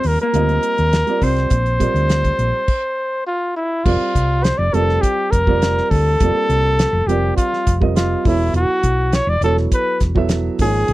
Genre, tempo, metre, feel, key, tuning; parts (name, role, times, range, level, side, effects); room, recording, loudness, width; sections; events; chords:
electric jazz fusion; 102 BPM; 4/4; straight; A4 = 442 Hz
mellow trumpet; melody; 0.0-10.9 s; E4 to D5; -18 LUFS; left 1 dB
vintage hollow-body jazz guitar; second line; 0.0-3.3 s; Bb3 to C4; -27 LUFS; left 1 dB
dark baby grand piano; accompaniment; 0.0-10.9 s; F3 to E5; -23 LUFS; right 5 dB
hollow-body short-scale fingered electric bass; bass; 0.0-10.9 s; E1 to Eb2; -19 LUFS; equal
damped 70s drum kit; drums; 0.0-10.9 s; crash cymbal, hi-hat, kick drum, snare drum; -20 LUFS; equal
little or no reverb; dry, close 1970s-style studio recording; -15 LUFS; side -17 dB against mid
0.0-3.9 A section; 3.9-10.9 B section
stop 2.7-3.9
0.0 Ebmaj9; 1.5 Bbadd9; 3.9 Fsus4; 8.3 Esus24